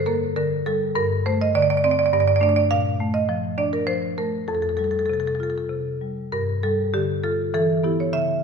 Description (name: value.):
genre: classical, contemporary piece for solo marimba.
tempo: 96-106 BPM.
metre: 3/4.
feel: rubato.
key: G minor.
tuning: A4 = 439 Hz.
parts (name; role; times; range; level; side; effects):
marimba with medium hard mallets; solo; 0.0-8.4 s; F2 to F5; -20 LUFS; right 1 dB; none.
room: moderate recital hall reverb, RT60 1.4 s.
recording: minimal, uncompressed stereo recording.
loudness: -20 LUFS.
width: side -6 dB against mid.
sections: 0.0-8.4 A section.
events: none.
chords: 0.0 Gm; 1.0 Gmadd9; 2.1 Gsus2; 2.7 Bbmaj7; 4.5 Fadd9; 6.3 G5; 7.5 E5.